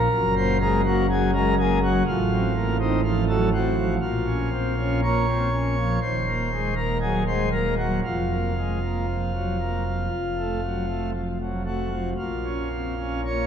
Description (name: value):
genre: classical, chorale-style piece for pipe organ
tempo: 60 BPM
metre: 4/4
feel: uneven beats, rubato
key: unclear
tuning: A4 = 440 Hz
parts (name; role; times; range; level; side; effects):
- pipe organ, principal chorus; solo; 0.0-13.5 s; Eb1 to Db5; -21 LUFS; equal; none
room: wet church reverb, RT60 2.9 s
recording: dark, warm production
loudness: -22 LUFS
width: side -8 dB against mid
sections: 0.0-13.5 A section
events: none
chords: 0.1 Gbadd9; 2.1 F/A; 4.0 Bbm; 6.0 Ebm; 8.0 Fsus4; 10.1 F; 12.2 Bbm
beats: | 0.12 1.09 2.06 3.04 | 4.02 5.04 6.03 7.02 | 8.04 9.08 10.12 11.15 | 12.18 13.24